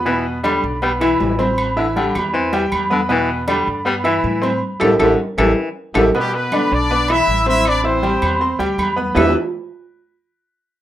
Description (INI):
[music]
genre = latin, salsa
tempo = 158 BPM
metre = 4/4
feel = straight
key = unclear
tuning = A4 = 439 Hz
[part]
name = bright upright piano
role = accompaniment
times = 0.0-9.3 s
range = B2 to C6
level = -19 LUFS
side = equal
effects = none
[part]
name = upright bass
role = bass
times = 0.0-9.3 s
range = A1 to A2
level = -24 LUFS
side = equal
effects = none
[part]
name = breathy baritone saxophone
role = second line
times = 0.1-6.0 s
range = D3 to G3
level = -21 LUFS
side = left 2 dB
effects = none
[part]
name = agogo bells and timbales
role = percussion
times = 0.1-9.3 s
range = none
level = -21 LUFS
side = right 3 dB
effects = none
[part]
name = congas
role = percussion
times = 0.1-9.3 s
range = none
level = -27 LUFS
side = left 1 dB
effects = none
[part]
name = claves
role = percussion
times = 0.4-9.3 s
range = none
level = -27 LUFS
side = left 2 dB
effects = none
[part]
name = brilliant horn section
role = melody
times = 6.2-9.3 s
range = G3 to E5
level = -18 LUFS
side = left 1 dB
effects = none
[sound]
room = moderate studio reverb, RT60 0.5 s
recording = rough home demo mix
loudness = -15 LUFS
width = side -12 dB against mid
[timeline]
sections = 0.0-6.1 A section; 6.1-9.2 B section; 9.2-10.7 C section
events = band accent 4.6-6.1; drum fill 5.6-6.1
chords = 0.1 Am7; 3.1 Em7; 4.6 A5; 6.1 Am7; 9.2 Em7